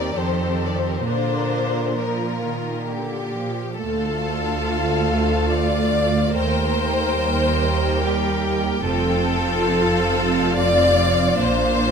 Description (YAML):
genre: classical, slow romantic movement for string orchestra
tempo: 65-75 BPM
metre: 3/4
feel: rubato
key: Bb major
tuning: A4 = 442 Hz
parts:
  - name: rich symphonic violin section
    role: melody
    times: 0.0-11.9 s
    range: Bb4 to G5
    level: -28 LUFS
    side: left 6 dB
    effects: none
  - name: clear symphonic violin section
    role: second line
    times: 0.0-11.9 s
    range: F4 to D5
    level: -22 LUFS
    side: left 2 dB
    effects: none
  - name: clear symphonic viola section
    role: accompaniment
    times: 0.0-11.9 s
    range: D3 to Bb4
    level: -25 LUFS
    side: right 2 dB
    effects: none
  - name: clear symphonic cello section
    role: bass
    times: 0.0-11.9 s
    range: D2 to Bb2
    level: -26 LUFS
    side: right 3 dB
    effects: none
  - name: rich symphonic double bass section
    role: bass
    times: 3.8-11.9 s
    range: F1 to Eb2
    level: -25 LUFS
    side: right 3 dB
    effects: none
room: moderate scoring stage reverb, RT60 2.1 s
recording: none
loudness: -18 LUFS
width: side -6 dB against mid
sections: 0.0-3.8 A section; 3.8-11.9 B section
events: none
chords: 0.2 F9; 1.1 Bb; 3.8 Dm; 6.4 Eb6; 8.9 F; 11.4 Bb